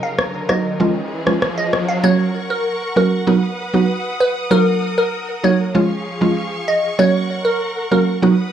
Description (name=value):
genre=dancehall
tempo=97 BPM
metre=4/4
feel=straight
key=F# major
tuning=A4 = 439 Hz
part: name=glassy wavetable pluck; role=melody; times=0.0-8.2 s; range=A#4 to E#5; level=-20 LUFS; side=equal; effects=chorus, low-pass filter, digital delay
part: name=mallet-like synth pluck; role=accompaniment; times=0.0-8.3 s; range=E#3 to F#4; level=-16 LUFS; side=right 3 dB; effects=chorus, low-pass filter
part: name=clear studio string section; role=sustained chords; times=0.0-8.5 s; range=E#3 to D#6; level=-26 LUFS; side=left 1 dB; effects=low-pass filter
part: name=riser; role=sound effects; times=0.0-2.0 s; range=none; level=-25 LUFS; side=left 1 dB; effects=none
part: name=electronic rim click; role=drums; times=0.2-1.9 s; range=none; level=-20 LUFS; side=equal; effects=none
room=light reverb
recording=worn, warbling old tape, cassette tape, warbly pitch drift, small room ambience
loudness=-15 LUFS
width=side -9 dB against mid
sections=0.0-2.0 A section; 2.0-8.5 B section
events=riser 0.0-2.0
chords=0.0 D#m; 0.8 C#/E#; 2.0 F#; 3.3 B; 4.5 D#m; 5.8 C#/E#; 7.0 F#